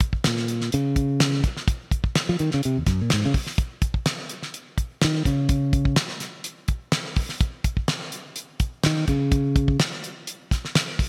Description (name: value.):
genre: electric jazz fusion.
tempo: 126 BPM.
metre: 4/4.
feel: straight.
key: unclear.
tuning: A4 = 441 Hz.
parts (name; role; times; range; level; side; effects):
damped 70s drum kit; drums; 0.0-11.1 s; hi-hat, kick drum, snare drum; -26 LUFS; equal; gated reverb.
modern bright fingered electric bass; bass; 0.3-5.9, 8.9-9.8 s; Eb2 to F3; -24 LUFS; equal; none.
room: light reverb.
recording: bright 1980s-style digital production.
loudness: -24 LUFS.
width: mono.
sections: 0.0-11.1 A section.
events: fingered electric bass solo 0.0-11.1.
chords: none.